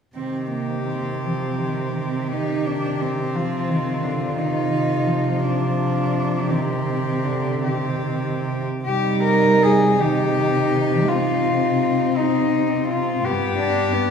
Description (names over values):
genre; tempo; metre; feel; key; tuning
classical, lyrical piece for cello ensemble; 46-59 BPM (dotted quarters); 12/8; rubato; C minor; A4 = 439 Hz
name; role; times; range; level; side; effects
warm cello; melody; 0.2-14.1 s; Eb4 to Bb4; -23 LUFS; left 3 dB; none
warm cello; second line; 0.2-14.1 s; Bb3 to Eb4; -26 LUFS; right 4 dB; none
warm cello; accompaniment; 0.2-14.1 s; D3 to D4; -25 LUFS; left 2 dB; none
dark cello; bass; 0.2-14.1 s; G2 to C3; -26 LUFS; right 3 dB; none
room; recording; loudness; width
wet recital hall reverb, RT60 1.5 s; heard from further back in the room; -19 LUFS; side -6 dB against mid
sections
0.2-8.9 A section; 8.9-14.1 B section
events
none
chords
0.2 Cm; 13.2 G